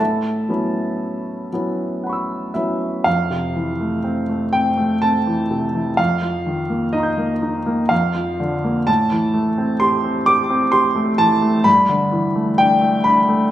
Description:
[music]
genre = classical, impressionist solo piano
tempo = 63 BPM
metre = 3/4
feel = uneven beats, rubato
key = A major, F major from 3.1 s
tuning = A4 = 439 Hz
[part]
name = clear grand piano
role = solo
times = 0.0-13.5 s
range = F2 to G6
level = -16 LUFS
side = equal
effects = none
[sound]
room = moderate recital hall reverb, RT60 1.5 s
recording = minimal, uncompressed stereo recording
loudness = -16 LUFS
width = side -12 dB against mid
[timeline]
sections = 0.0-3.1 A section; 3.1-13.5 B section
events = none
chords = 0.0 A69; 3.1 Fmaj7; 6.0 Ebadd9/F; 7.9 Bb/F; 8.9 Am7; 11.7 G69

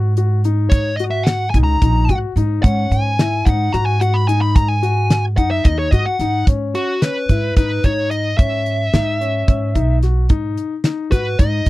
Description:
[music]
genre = progressive instrumental, band music in an uneven meter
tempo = 219 BPM (eighths)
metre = 7/8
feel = straight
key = G# minor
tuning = A4 = 440 Hz
[part]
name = dark grand piano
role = arpeggios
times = 0.0-11.7 s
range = C#4 to F#4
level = -23 LUFS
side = left 7 dB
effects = none
[part]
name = upright bass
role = bass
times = 0.0-11.7 s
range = A#1 to G#2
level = -18 LUFS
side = right 1 dB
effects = none
[part]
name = damped 70s drum kit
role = drums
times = 0.2-11.7 s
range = hi-hat, kick drum, snare drum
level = -14 LUFS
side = equal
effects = none
[part]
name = dark smooth lead guitar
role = melody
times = 0.7-11.7 s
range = F#4 to B5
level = -21 LUFS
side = equal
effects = overdrive
[sound]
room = little or no reverb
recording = dry, close 1970s-style studio recording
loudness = -14 LUFS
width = side -18 dB against mid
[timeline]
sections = 0.0-6.5 A section; 6.5-11.7 B section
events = lead electric guitar solo 0.0-6.5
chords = 0.0 G#7(no3); 0.7 D#m7; 2.6 C#sus4/G#; 4.6 G#5; 6.5 G#madd11; 8.4 E/G#; 10.3 G#m7

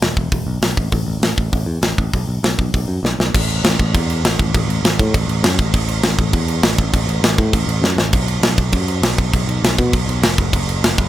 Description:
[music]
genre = punk rock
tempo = 200 BPM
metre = 4/4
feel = straight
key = unclear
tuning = A4 = 437 Hz
[part]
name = picked electric bass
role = bass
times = 0.0-11.1 s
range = E1 to B2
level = -19 LUFS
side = equal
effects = none
[part]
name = tight metal drum kit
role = drums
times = 0.0-11.0 s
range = crash cymbal, hi-hat, kick drum, snare drum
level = -16 LUFS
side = equal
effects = none
[sound]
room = little or no reverb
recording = none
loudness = -15 LUFS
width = side -13 dB against mid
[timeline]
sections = 0.0-3.3 A section; 3.3-11.1 B section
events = drum fill 3.0-3.3, 7.8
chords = none

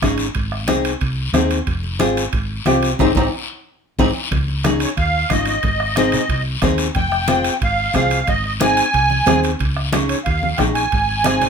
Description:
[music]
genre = latin, cumbia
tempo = 182 BPM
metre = 4/4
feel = straight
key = Ab major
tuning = A4 = 440 Hz
[part]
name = nylon-string guitar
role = accompaniment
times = 0.0-11.5 s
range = C4 to Ab4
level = -19 LUFS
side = left 2 dB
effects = none
[part]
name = hollow-body short-scale fingered electric bass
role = bass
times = 0.0-11.5 s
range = F1 to Eb2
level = -23 LUFS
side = equal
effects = none
[part]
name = bombo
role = percussion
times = 0.0-11.4 s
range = none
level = -24 LUFS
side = right 2 dB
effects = none
[part]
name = congas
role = percussion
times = 0.0-11.5 s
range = none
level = -24 LUFS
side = left 3 dB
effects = none
[part]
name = guiro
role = percussion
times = 0.0-11.5 s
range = none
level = -29 LUFS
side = left 6 dB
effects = none
[part]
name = timbales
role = percussion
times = 0.0-11.5 s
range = none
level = -28 LUFS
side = right 6 dB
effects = none
[part]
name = musette accordion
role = melody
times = 4.8-11.5 s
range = Db5 to Ab5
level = -18 LUFS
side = right 2 dB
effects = none
[sound]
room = light reverb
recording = minimal, uncompressed stereo recording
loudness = -16 LUFS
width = side -6 dB against mid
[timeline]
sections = 0.0-4.3 A section; 4.3-11.5 B section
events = band accent 3.0-4.3; drum fill 3.8-4.3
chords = 0.4 Ab; 1.7 Fm; 3.0 Ab; 4.3 Dbsus2; 5.6 Ab; 7.0 Fm; 8.3 Ab; 9.6 Dbsus2; 10.9 Ab

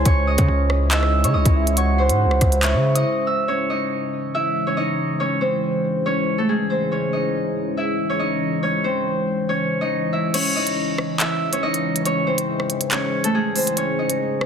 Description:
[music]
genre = hip hop, drill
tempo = 140 BPM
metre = 4/4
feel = half-time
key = C# harmonic minor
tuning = A4 = 439 Hz
[part]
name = Celtic harp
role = melody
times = 0.0-14.5 s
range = G#3 to E6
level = -21 LUFS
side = equal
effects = low-pass filter
[part]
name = soft octave-layered synth lead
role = second line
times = 0.0-3.4 s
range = C#5 to F#5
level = -27 LUFS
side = right 5 dB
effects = chorus, tremolo, tape echo
[part]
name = hard-hitting 808-style bass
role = bass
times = 0.0-3.0 s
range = C#2 to C#3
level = -19 LUFS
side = equal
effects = none
[part]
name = deep dark ambient pad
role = sustained chords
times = 0.1-14.5 s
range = C#3 to E4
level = -26 LUFS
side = left 1 dB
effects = chorus, built-in reverb
[part]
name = drill drum kit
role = drums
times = 0.1-3.0, 10.3-14.5 s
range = crash cymbal, handclaps, hi-hat, kick drum, rim click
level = -21 LUFS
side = equal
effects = none
[sound]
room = light reverb, digital ambience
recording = dense, heavily limited modern master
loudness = -18 LUFS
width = side -7 dB against mid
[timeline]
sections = 0.0-3.5 A section; 3.5-10.3 B section; 10.3-14.5 C section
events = break 3.1-3.5; kick muted 10.3-14.5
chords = 0.0 C#madd9

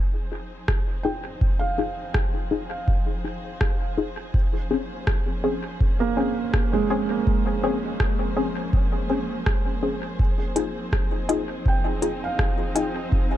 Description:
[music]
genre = ambient dub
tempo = 82 BPM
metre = 4/4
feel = swing 53% on 16ths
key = F minor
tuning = A4 = 443 Hz
[part]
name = dark studio string section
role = sustained chords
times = 0.0-13.4 s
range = F3 to C5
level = -34 LUFS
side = left 1 dB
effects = none
[part]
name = filtered dub chord stab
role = stabs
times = 0.3-13.0 s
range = C4 to Ab4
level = -28 LUFS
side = left 3 dB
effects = chorus, dub echo
[part]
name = electronic kick drum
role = drums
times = 0.7-13.3 s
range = none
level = -23 LUFS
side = equal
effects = overdrive
[part]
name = organic electronic drum kit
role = drums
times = 0.7-12.9 s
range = hi-hat, rim click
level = -33 LUFS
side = equal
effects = dub echo
[part]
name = felt-muted upright piano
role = arpeggios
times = 1.0-13.4 s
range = Ab3 to G5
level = -29 LUFS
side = right 5 dB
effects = tape echo
[sound]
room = little or no reverb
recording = dark, warm production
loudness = -22 LUFS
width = side -12 dB against mid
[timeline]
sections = 0.0-13.4 A section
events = fade-in on string section 0.0-13.4; filter sweep on synth stab 0.0-13.4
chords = 0.0 Fm7; 4.3 Bbm9; 10.2 Fm7

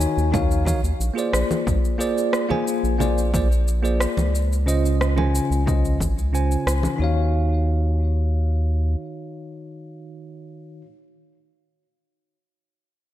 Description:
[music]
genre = sunset chillout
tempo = 90 BPM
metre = 4/4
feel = straight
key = Eb dorian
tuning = A4 = 440 Hz
[part]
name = bell-like tine electric piano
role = accompaniment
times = 0.0-10.9 s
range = Db3 to Ab5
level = -24 LUFS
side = moving between left 4 dB and right 5 dB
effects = auto-pan, low-pass filter, ping-pong delay
[part]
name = round analog bass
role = bass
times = 0.0-9.0 s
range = Ab1 to Eb2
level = -21 LUFS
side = equal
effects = none
[part]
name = electronic shaker and rim click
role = drums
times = 0.0-7.0 s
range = none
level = -29 LUFS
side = equal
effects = overdrive
[part]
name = electronic kick drum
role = drums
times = 0.3-6.1 s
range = none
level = -23 LUFS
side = equal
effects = overdrive
[part]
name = congas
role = percussion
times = 0.3-7.0 s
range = none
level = -29 LUFS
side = right 1 dB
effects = none
[sound]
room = light reverb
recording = dark, warm production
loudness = -19 LUFS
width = side -13 dB against mid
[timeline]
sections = 0.0-7.0 A section; 7.0-9.7 B section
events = filter sweep on tine electric piano 0.0-7.0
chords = 0.0 Ebm7; 1.3 Bb7; 4.3 Dbmaj7; 7.0 Ebm7

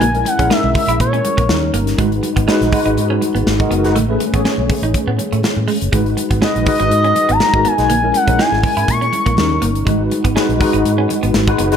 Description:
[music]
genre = polished 1980s jazz-funk pop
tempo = 122 BPM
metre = 4/4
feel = swing 54% on 16ths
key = G# minor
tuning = A4 = 441 Hz
[part]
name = expressive synth lead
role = melody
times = 0.0-1.7, 6.4-9.6 s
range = C#5 to C#6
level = -16 LUFS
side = left 2 dB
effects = chorus
[part]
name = mellow tine electric piano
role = accompaniment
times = 0.0-11.8 s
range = G3 to C#5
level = -18 LUFS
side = left 1 dB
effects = overdrive, medium stereo tremolo, ensemble chorus
[part]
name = clean electric guitar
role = riff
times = 0.0-11.7 s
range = G#3 to E4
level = -24 LUFS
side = right 5 dB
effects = lush chorus
[part]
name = vintage muted fingered electric bass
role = bass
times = 0.0-11.8 s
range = F#1 to A#2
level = -19 LUFS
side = equal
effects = none
[part]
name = modern studio drum kit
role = drums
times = 0.0-11.8 s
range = hi-hat, kick drum, snare drum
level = -19 LUFS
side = equal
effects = none
[part]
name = congas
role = percussion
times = 0.0-11.7 s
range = none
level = -31 LUFS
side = right 3 dB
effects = none
[sound]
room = moderate lush hall reverb, RT60 1.8 s, studio reverb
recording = none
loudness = -13 LUFS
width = side -8 dB against mid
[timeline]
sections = 0.0-11.8 A section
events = none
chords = 0.0 A#m7b5; 1.5 D#7; 2.0 G#m7; 4.0 Amaj9; 5.9 G#m7; 7.9 A#m7b5; 9.4 D#7; 9.9 G#m7

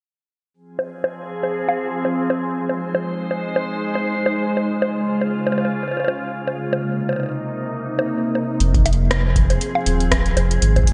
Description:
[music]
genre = IDM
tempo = 119 BPM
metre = 4/4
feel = swing 56% on 16ths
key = F minor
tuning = A4 = 440 Hz
[part]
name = glassy FM pad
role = sustained chords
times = 0.8-10.9 s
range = C3 to C5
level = -25 LUFS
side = equal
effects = ensemble chorus, built-in reverb, vintage 12-bit sampler grit
[part]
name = booming analog drum machine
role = drums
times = 0.8-10.9 s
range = bongos, hi-hat, rim click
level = -26 LUFS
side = equal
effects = overdrive, low-pass filter on perc, low-pass filter on hats, low-pass filter on snare
[part]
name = round analog bass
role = bass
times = 8.6-10.9 s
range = Eb1 to Ab1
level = -20 LUFS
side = equal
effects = tube saturation
[part]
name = electronic kick drum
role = drums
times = 8.7-10.9 s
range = none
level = -21 LUFS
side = equal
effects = overdrive
[sound]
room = moderate lush hall reverb, RT60 1.9 s, digital ambience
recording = big arena sound, nothing above 10.8 kHz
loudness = -21 LUFS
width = mono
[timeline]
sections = 0.5-10.9 A section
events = filter sweep on drum 0.5-10.9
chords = 0.5 Fm; 2.6 Ab; 4.6 Db; 6.6 Cm7; 8.6 Fm

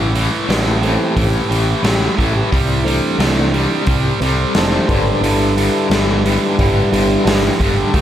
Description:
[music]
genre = classic rock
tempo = 89 BPM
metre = 4/4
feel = straight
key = unclear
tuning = A4 = 443 Hz
[part]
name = cranked stack guitar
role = riff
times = 0.0-8.0 s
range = G2 to A3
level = -22 LUFS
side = left 10 dB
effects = overdrive, tremolo
[part]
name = tight distorted guitar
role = riff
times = 0.0-8.0 s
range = G2 to A3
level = -21 LUFS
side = right 10 dB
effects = distortion
[part]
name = growling picked electric bass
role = bass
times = 0.0-8.0 s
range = F1 to D2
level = -19 LUFS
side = equal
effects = overdrive
[part]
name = raw garage drum kit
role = drums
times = 0.2-8.0 s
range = hi-hat, kick drum, snare drum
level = -19 LUFS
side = equal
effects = none
[part]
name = mellow tonewheel organ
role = sustained chords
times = 0.5-8.0 s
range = E3 to C5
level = -19 LUFS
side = equal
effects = slow rotary speaker, chorus vibrato
[sound]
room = light reverb, small room ambience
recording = none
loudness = -13 LUFS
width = side -11 dB against mid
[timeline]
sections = 0.0-8.0 A section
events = tonewheel organ solo 0.0-8.0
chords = 0.0 Am; 2.5 Cadd9; 4.9 G

